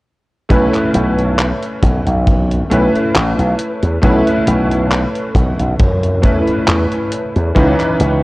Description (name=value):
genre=vaporwave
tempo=68 BPM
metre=4/4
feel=swing 54% on 16ths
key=unclear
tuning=A4 = 442 Hz
part: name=bright electric grand piano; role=accompaniment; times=0.5-8.2 s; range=E3 to B4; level=-16 LUFS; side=equal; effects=ensemble chorus, tape echo
part: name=slap bass with an envelope filter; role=bass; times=0.5-8.2 s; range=A1 to F#2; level=-15 LUFS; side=equal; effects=none
part: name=detuned 8-bit digital drum machine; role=drums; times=0.5-8.2 s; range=handclaps, hi-hat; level=-21 LUFS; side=equal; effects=none
part: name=kick drum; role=drums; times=0.5-7.8 s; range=none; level=-17 LUFS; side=equal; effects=none
room=light reverb, studio reverb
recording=worn, warbling old tape, cassette tape, warbly pitch drift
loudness=-12 LUFS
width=side -20 dB against mid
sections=0.5-8.2 A section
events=none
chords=0.5 B9sus4; 7.6 C#m9